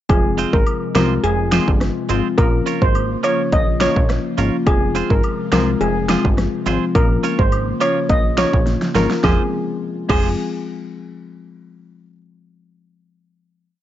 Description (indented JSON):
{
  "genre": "dancehall",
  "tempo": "105 BPM",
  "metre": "4/4",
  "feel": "straight",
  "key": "F minor",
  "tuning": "A4 = 438 Hz",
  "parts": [
    { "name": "steel pan", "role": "melody", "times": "0.1-10.4 s", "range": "Ab4 to Eb5", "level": "-22 LUFS", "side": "equal", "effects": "analog delay" },
    { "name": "marimba with medium mallets", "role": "accompaniment", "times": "0.1-10.3 s", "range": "F3 to F4", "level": "-24 LUFS", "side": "left 5 dB", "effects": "sidechain pumping" },
    { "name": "airy breathy pad", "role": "sustained chords", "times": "0.1-9.5 s", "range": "C3 to F4", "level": "-28 LUFS", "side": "equal", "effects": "chorus, sidechain pumping" },
    { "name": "plucky analog bass", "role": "bass", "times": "0.1-10.4 s", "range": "F1 to C2", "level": "-21 LUFS", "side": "right 1 dB", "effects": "none" },
    { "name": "pop drum kit", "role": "drums", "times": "0.1-10.2 s", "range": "crash cymbal, finger snaps, hi-hat, kick drum, rim click, snare drum", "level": "-18 LUFS", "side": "equal", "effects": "overdrive, vintage 12-bit sampler grit" },
    { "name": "woodblock and cabasa", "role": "percussion", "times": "0.1-10.4 s", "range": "none", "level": "-30 LUFS", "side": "left 2 dB", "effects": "none" },
    { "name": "clean electric guitar", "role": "arpeggios", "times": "0.4-10.3 s", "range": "Ab3 to Db5", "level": "-24 LUFS", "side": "right 10 dB", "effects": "none" }
  ],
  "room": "light reverb",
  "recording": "nothing above 7.7 kHz",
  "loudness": "-15 LUFS",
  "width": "side -12 dB against mid",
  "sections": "0.1-9.2 chorus; 9.2-11.5 final chord",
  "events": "drum fill 8.7-9.2",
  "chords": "0.1 Fm; 2.4 Bbm; 4.7 Fm; 7.0 Bbm; 9.2 Fm"
}